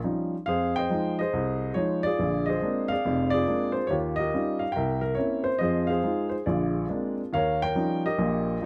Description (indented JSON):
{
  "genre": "solo jazz",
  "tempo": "140 BPM",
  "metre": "4/4",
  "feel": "swing 67% on 8ths",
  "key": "unclear",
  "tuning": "A4 = 440 Hz",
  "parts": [
    { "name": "warm upright piano", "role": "solo", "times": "0.0-8.7 s", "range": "F1 to G5", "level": "-27 LUFS", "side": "equal", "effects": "none" }
  ],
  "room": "light reverb",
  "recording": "close, detailed microphones",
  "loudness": "-27 LUFS",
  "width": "mono",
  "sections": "0.0-7.3 A section; 7.3-8.7 A section",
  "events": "none",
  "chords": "0.5 Fm7; 2.2 Bb9; 3.9 Eb9; 4.8 C7b9; 5.6 Fm7; 6.5 Bb9; 7.3 Eb9"
}